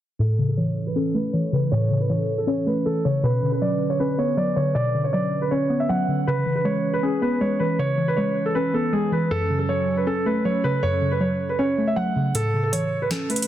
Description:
hip hop, trap; 158 BPM; 4/4; half-time; A4 = 439 Hz
dark concert grand piano; melody; 0.2-13.5 s; G#4 to F#5; -25 LUFS; right 2 dB; low-pass filter
warbly dusty pluck; accompaniment; 0.2-13.5 s; F#2 to C#4; -23 LUFS; left 1 dB; chorus, low-pass filter
hollow soft pad; sustained chords; 0.7-12.3 s; D3 to B4; -29 LUFS; right 4 dB; chorus, low-pass filter
booming analog drum machine; drums; 12.3-13.5 s; hi-hat, snare drum; -26 LUFS; right 1 dB
light reverb, digital ambience; dense, heavily limited modern master; -20 LUFS; side -12 dB against mid
0.2-12.3 A section; 12.3-13.5 B section
filter sweep 0.2-12.3; kick muted 12.3-13.5
0.2 A; 3.2 Bmadd9; 6.3 C#m7; 9.3 F#m; 12.3 A

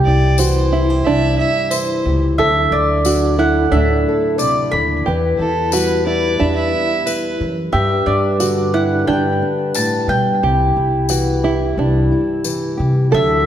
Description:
acoustic folk duo or small band; 90 BPM; 4/4; straight; A4 = 440 Hz
mandolin; melody; 0.0-13.4 s; D5 to B5; -19 LUFS; equal; tape echo
warm fiddle; second line; 0.0-7.6 s; A4 to E5; -21 LUFS; right 3 dB
fingerpicked old ladder-braced acoustic guitar; accompaniment; 0.0-13.5 s; E2 to B4; -20 LUFS; left 2 dB
dark woodwind section; sustained chords; 0.0-13.5 s; C3 to B4; -25 LUFS; left 2 dB
open-back banjo; arpeggios; 0.0-13.5 s; D4 to A4; -21 LUFS; right 4 dB
upright bass; bass; 0.0-13.4 s; C2 to G3; -19 LUFS; equal
tambourine; percussion; 0.4-12.6 s; -26 LUFS; left 8 dB
wet concert hall reverb, RT60 2.0 s; -14 LUFS; side -10 dB against mid
0.0-13.5 A section
0.0 C; 2.4 Dadd9; 5.1 Em; 7.7 G; 10.4 C

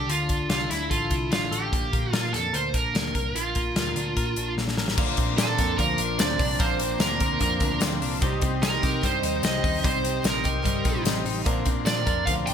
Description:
jangly indie pop; 148 BPM; 4/4; straight; A4 = 440 Hz
high-gain lead guitar; melody; 0.0-12.5 s; E4 to G5; -28 LUFS; right 4 dB; distortion, ping-pong delay
twelve-string electric guitar; arpeggios; 0.0-12.5 s; Bb2 to Bb4; -31 LUFS; left 5 dB; ping-pong delay
vintage muted picked electric bass; bass; 0.0-12.5 s; G1 to C3; -32 LUFS; equal
modern studio drum kit; drums; 0.1-12.5 s; crash cymbal, hi-hat, kick drum, snare drum; -26 LUFS; equal; gated reverb
overdriven combo organ; accompaniment; 5.0-12.5 s; Bb3 to G5; -33 LUFS; left 9 dB
picked twelve-string acoustic guitar; accompaniment; 5.0-12.5 s; Bb2 to Eb4; -32 LUFS; right 8 dB
tambourine; percussion; 5.4-12.5 s; -40 LUFS; left 18 dB
light reverb, small room ambience; bright 1980s-style digital production; -22 LUFS; side -8 dB against mid
0.0-5.0 A section; 5.0-12.5 B section
drum fill 4.6-5.0; transistor combo organ fill 7.6-8.2
0.0 Dmadd9; 1.7 Bb; 5.0 Bbadd9; 8.2 Cm; 11.5 Bbadd9

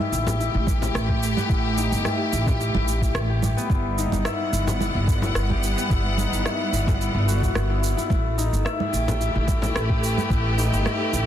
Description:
organic downtempo; 109 BPM; 4/4; swing 53% on 16ths; A4 = 444 Hz
clear studio string section; sustained chords; 0.0-11.3 s; G3 to F#5; -28 LUFS; right 1 dB; sidechain pumping
concert harp; arpeggios; 0.0-11.3 s; B3 to E5; -28 LUFS; left 4 dB; tape echo
upright bass; bass; 0.1-11.3 s; G1 to A1; -24 LUFS; equal
electronic shaker, congas and rim click; drums; 0.1-11.3 s; -30 LUFS; right 3 dB; studio reverb, soft clipping on snare
frame drum; percussion; 0.3-9.7 s; -30 LUFS; left 2 dB
electronic kick drum; drums; 0.7-10.4 s; -23 LUFS; equal; studio reverb
light reverb, small room reverb; dense, heavily limited modern master; -20 LUFS; side -10 dB against mid
0.0-11.3 A section
0.0 Asus2; 3.7 Emadd9/G; 8.1 Asus2

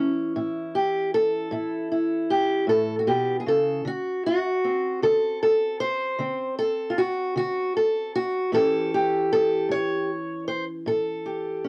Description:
acoustic country blues, solo or duo; 51 BPM (dotted quarters); 12/8; straight; A mixolydian; A4 = 440 Hz
fingerpicked steel-string acoustic guitar; solo; 0.0-11.7 s; A2 to C#5; -25 LUFS; equal; cassette tape
light reverb; home recording on cassette; -25 LUFS; mono
0.0-11.7 A section
0.0 A; 3.9 D7; 8.5 A7

